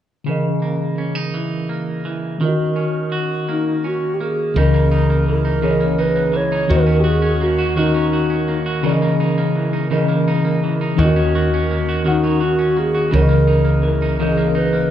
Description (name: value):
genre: R&B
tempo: 56 BPM (dotted quarters)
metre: 6/8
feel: straight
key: C# dorian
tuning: A4 = 440 Hz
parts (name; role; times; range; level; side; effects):
- mellow tine electric piano; accompaniment; 0.2-14.9 s; C#3 to F#5; -18 LUFS; left 1 dB; medium stereo tremolo
- electric guitar at the edge of break-up; second line; 0.3-14.9 s; C#3 to F#4; -24 LUFS; right 4 dB; warbly pitch drift
- mellow hollow wooden-headed alto flute; melody; 3.5-8.6, 12.1-14.9 s; D#4 to C#5; -20 LUFS; equal; none
- woody fretless electric bass; bass; 4.6-14.9 s; C#2 to D#2; -20 LUFS; equal; none
room: wet large studio reverb, RT60 0.9 s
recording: band playing live in one room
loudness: -15 LUFS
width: side -10 dB against mid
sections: 0.3-4.6 A section; 4.6-14.9 B section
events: none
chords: 0.3 C#m69; 2.4 D#m7; 4.6 C#m69; 6.7 D#m7; 8.8 C#m69; 11.0 D#m7; 13.1 C#m69